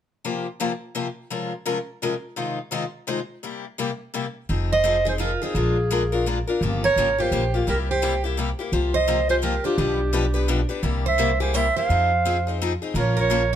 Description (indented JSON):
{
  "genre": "acoustic string swing (jazz manouche)",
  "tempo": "170 BPM",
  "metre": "3/4",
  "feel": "swing 61% on 8ths",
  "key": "F minor",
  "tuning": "A4 = 442 Hz",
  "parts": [
    { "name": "picked steel-string acoustic guitar", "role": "accompaniment", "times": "0.2-13.4 s", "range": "B2 to C5", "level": "-26 LUFS", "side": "left 4 dB", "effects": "none" },
    { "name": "upright bass", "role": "bass", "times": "4.5-13.6 s", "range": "F1 to F2", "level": "-24 LUFS", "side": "equal", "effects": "none" },
    { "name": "mellow clarinet", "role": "melody", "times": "4.7-13.5 s", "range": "G4 to F5", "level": "-23 LUFS", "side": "right 2 dB", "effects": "plate reverb" },
    { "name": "picked plugged-in steel-string acoustic guitar", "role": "second line", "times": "4.7-13.6 s", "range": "D4 to C5", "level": "-29 LUFS", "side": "right 5 dB", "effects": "none" }
  ],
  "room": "light reverb",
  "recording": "none",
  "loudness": "-21 LUFS",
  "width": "side -10 dB against mid",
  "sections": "0.2-4.5 A section; 4.5-13.0 B section",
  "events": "none",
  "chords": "0.2 C7sus4; 1.3 Bbm9/C; 2.4 Fm7/C; 3.4 C7; 4.5 Fm7; 5.6 Bb7; 6.6 Gm7b5; 7.7 C7; 8.7 C7sus4; 9.8 G7/B; 10.8 C7; 11.9 Fm7; 13.0 Bbm",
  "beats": "| 0.25 0.60 0.95 | 1.31 1.66 2.02 | 2.37 2.73 3.08 | 3.43 3.79 4.14 | 4.49 4.85 5.20 | 5.55 5.91 6.26 | 6.61 6.96 7.32 | 7.67 8.02 8.37 | 8.72 9.08 9.43 | 9.78 10.13 10.48 | 10.84 11.19 11.54 | 11.89 12.25 12.60 | 12.95 13.30"
}